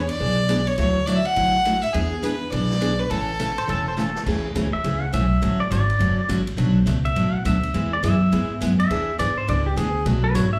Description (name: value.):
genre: country, western swing.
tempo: 207 BPM.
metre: 4/4.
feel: swing 62% on 8ths.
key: A major.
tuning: A4 = 441 Hz.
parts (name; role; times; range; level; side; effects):
bright fiddle; melody; 0.0-4.0 s; G#4 to F#5; -26 LUFS; equal; plate reverb.
picked steel-string acoustic guitar; accompaniment; 0.0-10.5 s; B2 to A4; -28 LUFS; equal; plate reverb, slapback echo.
upright bass; bass; 0.0-10.6 s; E1 to G#2; -25 LUFS; equal; none.
swinging big-band drum kit; drums; 0.1-10.4 s; crash cymbal, hi-hat, kick drum, ride cymbal, snare drum; -39 LUFS; equal; none.
pedal steel guitar; second line; 3.6-10.6 s; G4 to F#5; -28 LUFS; equal; plate reverb, slapback echo.
room: light reverb.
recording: live gig heard through the venue's PA, club ambience.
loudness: -22 LUFS.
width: mono.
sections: 0.0-4.3 A section; 4.3-10.6 B section.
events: drum fill 4.0; pedal steel guitar solo 4.3-10.6.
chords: 0.0 E7; 0.8 Dadd9; 1.9 E7; 3.1 A; 4.3 Amaj7; 5.4 Dmaj7; 6.6 Bm7; 7.7 E; 8.9 E7; 10.1 Bm7.